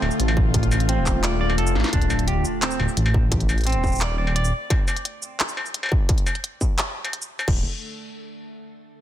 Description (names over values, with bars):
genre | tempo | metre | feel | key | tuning
half-time drum and bass | 173 BPM | 4/4 | half-time | D phrygian | A4 = 440 Hz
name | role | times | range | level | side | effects
bowed-like drone | sustained chords | 0.0-1.9, 7.6 s | D3 to F4 | -29 LUFS | left 1 dB | built-in reverb, sidechain pumping
dark detuned saw bass | bass | 0.0-4.5, 7.5-7.6 s | D1 to A1 | -22 LUFS | equal | none
industrial drum kit | drums | 0.0-7.5 s | crash cymbal, handclaps, hi-hat, shaker, snare drum, struck metal | -26 LUFS | left 1 dB | soft clipping on snare
electronic kick drum | drums | 0.4-7.5 s | none | -22 LUFS | equal | distortion
semi-hollow electric guitar | arpeggios | 0.9-4.5 s | C4 to D5 | -29 LUFS | right 3 dB | tape echo
sub drop | sound effects | 1.9-3.3 s | none | -30 LUFS | equal | none
room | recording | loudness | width
light reverb, digital ambience | dense, heavily limited modern master | -20 LUFS | side -12 dB against mid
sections
0.0-1.9 A section; 1.9-7.5 B section; 7.5-8.9 C section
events
drop 0.0-1.9; drum fill 1.8; impact 1.9-3.3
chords
0.0 D5